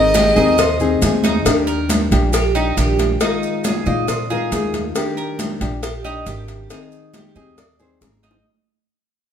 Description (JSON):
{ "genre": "latin, Cuban son and guajira", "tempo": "137 BPM", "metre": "4/4", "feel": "straight", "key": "Eb major", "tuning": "A4 = 441 Hz", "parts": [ { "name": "warm violin", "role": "melody", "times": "0.0-1.2 s", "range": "Eb5", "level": "-17 LUFS", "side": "equal", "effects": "none" }, { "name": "nylon-string guitar", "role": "second line", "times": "0.0-8.3 s", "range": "G4 to D5", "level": "-26 LUFS", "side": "right 2 dB", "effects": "none" }, { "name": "nylon-string guitar", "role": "accompaniment", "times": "0.0-8.5 s", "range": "Eb3 to Ab4", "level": "-22 LUFS", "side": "left 4 dB", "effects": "none" }, { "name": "Cuban tres", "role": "arpeggios", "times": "0.0-8.4 s", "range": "Eb4 to Eb5", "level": "-24 LUFS", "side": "right 5 dB", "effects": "none" }, { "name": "upright bass", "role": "bass", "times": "0.0-8.4 s", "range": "Ab1 to Bb2", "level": "-22 LUFS", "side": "right 1 dB", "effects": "none" }, { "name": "congas", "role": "percussion", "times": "0.1-8.5 s", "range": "none", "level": "-24 LUFS", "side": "right 1 dB", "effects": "none" }, { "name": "maracas", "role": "percussion", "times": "0.1-8.5 s", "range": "none", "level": "-31 LUFS", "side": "right 6 dB", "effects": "none" }, { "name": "cowbell and bongos", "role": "percussion", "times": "0.2-8.5 s", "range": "none", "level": "-24 LUFS", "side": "left 4 dB", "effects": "none" } ], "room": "wet large studio reverb, RT60 1.0 s", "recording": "band playing live in one room", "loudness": "-15 LUFS", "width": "side -8 dB against mid", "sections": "0.0-1.5 A section; 1.5-8.5 B section", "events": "fade-out 1.5-8.5; drum fill 8.0-8.5", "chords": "0.0 Abmaj7; 1.5 Ebmaj7; 3.2 Bb7sus4; 5.0 Ebmaj7; 6.7 Abmaj7" }